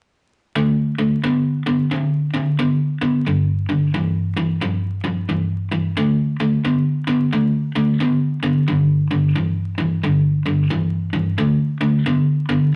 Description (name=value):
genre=blues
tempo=89 BPM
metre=4/4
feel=swing 63% on 8ths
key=unclear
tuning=A4 = 440 Hz
part: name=cranked stack guitar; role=solo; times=0.6-12.7 s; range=G2 to C4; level=-19 LUFS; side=equal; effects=overdrive
room=moderate large studio reverb, RT60 0.9 s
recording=vinyl crackle, nothing above 10.6 kHz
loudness=-19 LUFS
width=mono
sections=0.6-6.0 A section; 6.0-12.8 B section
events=none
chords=0.6 D5; 3.3 G5; 6.0 D5; 8.7 G5; 11.4 D5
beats=| 0.56 1.23 1.91 2.58 | 3.26 3.94 4.62 5.29 | 5.97 6.65 7.32 8.00 | 8.68 9.35 10.03 10.71 | 11.38 12.06